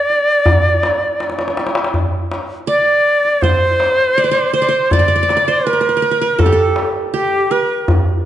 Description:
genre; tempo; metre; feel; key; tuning
Arabic maqam ensemble; 81 BPM; 4/4; straight; unclear; A4 = 440 Hz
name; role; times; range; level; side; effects
bright reedy low ney; melody; 0.0-7.9 s; G4 to D5; -14 LUFS; equal; none
darbuka; percussion; 0.1-8.1 s; none; -16 LUFS; left 1 dB; none
qanun; second line; 2.7-8.3 s; G4 to D5; -19 LUFS; right 3 dB; none
room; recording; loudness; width
wet recital hall reverb, RT60 1.4 s; nothing above 10.8 kHz; -12 LUFS; side -12 dB against mid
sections
0.0-2.0 A section; 2.0-8.3 B section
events
drum fill 1.2-2.0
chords
none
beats
0.47 1.21 | 1.95 2.69 3.44 4.18 | 4.92 5.66 6.40 7.14 | 7.88

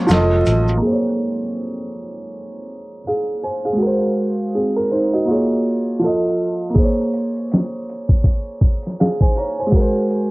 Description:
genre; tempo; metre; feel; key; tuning
lo-fi hip hop; 81 BPM; 4/4; swing 59% on 16ths; Bb minor; A4 = 444 Hz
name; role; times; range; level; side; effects
felt-muted upright piano; accompaniment; 0.0-10.3 s; F3 to Bb5; -18 LUFS; right 1 dB; none
vintage muted fingered electric bass; bass; 0.1-0.8 s; F1 to A1; -17 LUFS; equal; transformer saturation
dusty soul sampler-style drum kit; drums; 0.1-0.8, 6.8-10.3 s; hi-hat, kick drum, snare drum; -16 LUFS; equal; overdrive, vintage 12-bit sampler grit
tube shaker; percussion; 0.1-0.8 s; none; -40 LUFS; left 4 dB; none
room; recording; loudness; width
light reverb; worn, warbling old tape, cassette tape, vinyl crackle, warbly pitch drift, low-pass filter; -16 LUFS; side -22 dB against mid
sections
0.8-10.3 A section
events
none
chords
0.1 F7; 0.8 Bbm9; 3.8 Ab9; 5.3 Bbm7; 6.0 F7; 6.8 Bbm9; 9.7 Ab9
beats
0.09 | 0.83 1.57 2.31 3.05 | 3.79 4.54 5.28 6.02 | 6.76 7.50 8.24 8.98 | 9.72

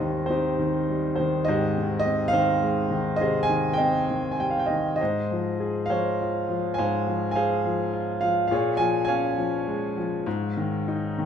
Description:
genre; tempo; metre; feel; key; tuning
classical, lyrical solo piano; 102 BPM; 3/4; rubato; Ab major; A4 = 440 Hz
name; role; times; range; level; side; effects
clear concert grand piano; solo; 0.0-11.3 s; Eb2 to Ab5; -22 LUFS; equal; none
room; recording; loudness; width
moderate recital hall reverb, RT60 1.6 s; minimal, uncompressed stereo recording; -22 LUFS; side -8 dB against mid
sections
0.0-11.3 A section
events
none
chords
0.0 Abmaj7; 5.0 Dbmaj7/Ab; 8.5 Bbm7; 10.3 Ab5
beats
0.29 0.88 | 1.47 2.04 2.61 | 3.19 3.78 4.39 | 5.00 5.60 6.20 | 6.78 7.36 7.94 | 8.51 9.09 9.66 | 10.26 10.86

